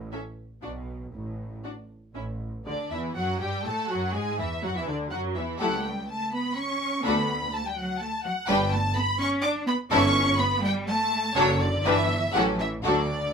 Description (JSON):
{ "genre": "quick classical-period movement for string orchestra", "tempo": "123 BPM", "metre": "3/4", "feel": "rubato", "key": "D major", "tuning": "A4 = 441 Hz", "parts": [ { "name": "clear symphonic double bass section", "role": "bass", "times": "0.0-13.3 s", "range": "F#1 to A2", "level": "-32 LUFS", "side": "right 1 dB", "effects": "none" }, { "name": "dark symphonic cello section", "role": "bass", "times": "0.0-13.3 s", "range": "A2 to D4", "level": "-31 LUFS", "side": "right 1 dB", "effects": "none" }, { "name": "clear symphonic violin section", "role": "melody", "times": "0.1-13.3 s", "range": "C#5 to D6", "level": "-28 LUFS", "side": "left 1 dB", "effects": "none" }, { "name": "rich studio violin section", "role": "second line", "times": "0.1-13.1 s", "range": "D4 to B4", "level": "-30 LUFS", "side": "left 1 dB", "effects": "none" }, { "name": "clear symphonic viola section", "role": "accompaniment", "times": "0.1-13.1 s", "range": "D3 to E4", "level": "-29 LUFS", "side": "left 1 dB", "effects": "none" } ], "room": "moderate studio reverb, RT60 0.6 s", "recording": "minimal, uncompressed stereo recording", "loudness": "-24 LUFS", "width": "side -6 dB against mid", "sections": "0.0-2.7 A section; 2.7-13.3 B section", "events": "none", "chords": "0.0 N.C.; 2.7 D; 4.1 E7; 5.6 A7/C#; 7.1 D; 8.5 G; 9.9 A7/G; 11.4 D/F#; 11.8 Em7/G; 12.3 A7" }